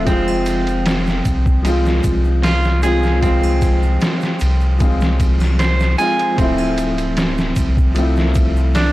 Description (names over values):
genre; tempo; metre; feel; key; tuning
trip hop; 76 BPM; 4/4; straight; unclear; A4 = 439 Hz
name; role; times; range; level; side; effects
clear upright piano; accompaniment; 0.0-8.9 s; F3 to F4; -20 LUFS; left 1 dB; harmonic tremolo, tape echo
clean electric guitar; arpeggios; 0.0-8.9 s; C4 to Ab5; -21 LUFS; right 2 dB; tape echo
soft dub sub bass; bass; 0.0-8.9 s; D1 to C2; -17 LUFS; equal; transformer saturation
trip hop sampler-style drum kit; drums; 0.1-8.9 s; hi-hat, kick drum, ride cymbal, snare drum; -20 LUFS; equal; none
tube shaker and triangle; percussion; 0.1-8.9 s; none; -40 LUFS; right 4 dB; none
room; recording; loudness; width
little or no reverb; blown-out, overdriven recording, vinyl crackle, overdrive; -14 LUFS; side -17 dB against mid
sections
0.0-8.9 A section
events
none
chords
0.1 Fm; 6.4 Dm7